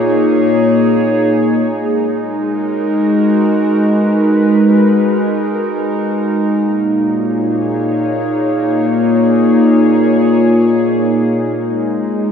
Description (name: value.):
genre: ambient.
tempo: free time.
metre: none.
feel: none.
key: G# minor.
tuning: A4 = 440 Hz.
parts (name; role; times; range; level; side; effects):
evolving wavetable pad; solo; 0.0-12.3 s; A#2 to C#5; -11 LUFS; equal; chorus, built-in reverb, diffuse ambient delay.
room: wet concert hall reverb, RT60 2.2 s.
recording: none.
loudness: -11 LUFS.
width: side -7 dB against mid.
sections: 0.0-1.4 A section; 1.4-12.3 B section.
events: none.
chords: 0.0 D#7sus4/A#; 1.4 G#m9; 6.5 D#7sus4/A#; 11.5 G#m.